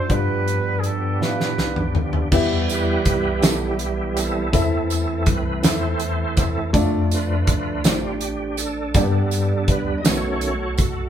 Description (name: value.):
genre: slow gospel.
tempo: 54 BPM (dotted quarters).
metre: 6/8.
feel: straight.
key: unclear.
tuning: A4 = 440 Hz.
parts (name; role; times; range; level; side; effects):
growling trumpet; melody; 0.0-2.0 s; Ab4 to C5; -26 LUFS; right 4 dB; none.
warm upright piano; accompaniment; 0.0-11.1 s; G2 to F5; -26 LUFS; left 2 dB; none.
bright tonewheel organ; sustained chords; 0.0-11.1 s; D#3 to Eb5; -25 LUFS; right 3 dB; slow rotary speaker, chorus vibrato.
mellow French horn section; sustained chords; 0.0-2.3 s; F3 to D4; -35 LUFS; left 1 dB; none.
mellow tine electric piano; bass; 0.0-11.1 s; A1 to A2; -25 LUFS; equal; medium stereo tremolo.
natural country drum kit; drums; 0.1-11.0 s; crash cymbal, hi-hat, kick drum, snare drum, toms; -21 LUFS; equal; none.
tambourine; percussion; 2.3-11.1 s; none; -33 LUFS; right 6 dB; none.
room: moderate studio reverb, RT60 0.8 s.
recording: band playing live in one room.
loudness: -18 LUFS.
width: side -9 dB against mid.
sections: 0.0-2.3 A section; 2.3-11.1 B section.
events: drum fill 1.2-2.3; tonewheel organ solo 2.3-11.1.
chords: 0.1 G7; 2.3 Em; 4.5 Am; 6.7 Dm; 8.9 G; 10.0 B7.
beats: | 0.10 1.21 | 2.32 3.43 | 4.53 5.64 | 6.74 7.84 | 8.95 10.05.